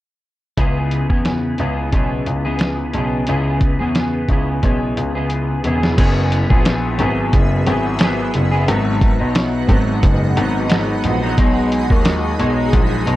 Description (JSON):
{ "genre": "indie pop, bedroom pop", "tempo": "89 BPM", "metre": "4/4", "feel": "swing 55% on 16ths", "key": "unclear", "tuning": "A4 = 440 Hz", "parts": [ { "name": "electric guitar at the edge of break-up", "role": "accompaniment", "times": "0.6-13.2 s", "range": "G#2 to G#4", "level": "-20 LUFS", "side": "equal", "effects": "ensemble chorus, vibrato effect" }, { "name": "clear concert grand piano", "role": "bass", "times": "0.6-13.2 s", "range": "E1 to E2", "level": "-19 LUFS", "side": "left 1 dB", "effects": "none" }, { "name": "lo-fi sampler-style drum kit", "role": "drums", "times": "0.6-13.2 s", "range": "crash cymbal, hi-hat, kick drum, snare drum", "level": "-17 LUFS", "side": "equal", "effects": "none" }, { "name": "shimmering ambient pad", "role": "sustained chords", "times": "6.9-13.2 s", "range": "G#4 to B5", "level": "-27 LUFS", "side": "right 2 dB", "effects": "chorus, built-in reverb" } ], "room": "little or no reverb", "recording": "dark, warm production", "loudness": "-15 LUFS", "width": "side -15 dB against mid", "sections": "0.6-6.0 A section; 6.0-13.2 B section", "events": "drum fill 4.6-6.0", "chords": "0.6 C#m7; 6.0 F#9sus4; 8.7 G#m7; 11.4 B6" }